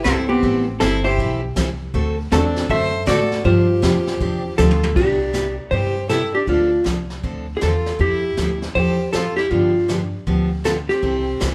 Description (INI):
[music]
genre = country, western swing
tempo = 158 BPM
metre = 4/4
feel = swing 64% on 8ths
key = C major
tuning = A4 = 440 Hz
[part]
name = vintage hollow-body jazz guitar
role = melody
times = 0.0-11.5 s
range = B3 to E5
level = -22 LUFS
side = equal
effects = none
[part]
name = clear fiddle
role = second line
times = 0.0-11.5 s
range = C4 to C5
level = -30 LUFS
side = equal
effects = none
[part]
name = picked steel-string acoustic guitar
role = accompaniment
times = 0.0-11.5 s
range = C3 to A4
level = -26 LUFS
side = equal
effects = none
[part]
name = upright bass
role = bass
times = 0.0-11.5 s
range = G1 to A2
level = -26 LUFS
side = equal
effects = none
[part]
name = vintage brush drum kit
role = drums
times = 0.1-11.5 s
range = brushed snare drum, hi-hat, kick drum, ride cymbal, snare drum, toms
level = -29 LUFS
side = equal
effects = none
[sound]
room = moderate large studio reverb, RT60 1.2 s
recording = band playing live in one room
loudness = -19 LUFS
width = mono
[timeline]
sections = 0.0-5.0 A section; 5.0-11.5 B section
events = drum fill 4.6-5.0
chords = 0.4 Am9; 1.9 D7; 3.5 G7sus4; 5.0 Cmaj9; 6.5 Dm7; 8.0 Fmaj9; 9.5 G7; 11.0 C6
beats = 0.05 | 0.43 0.81 1.18 1.56 | 1.94 2.32 2.69 3.07 | 3.45 3.83 4.21 4.58 | 4.96 5.34 5.72 6.10 | 6.48 6.86 7.24 7.62 | 8.00 8.37 8.75 9.13 | 9.51 9.89 10.27 10.65 | 11.03 11.41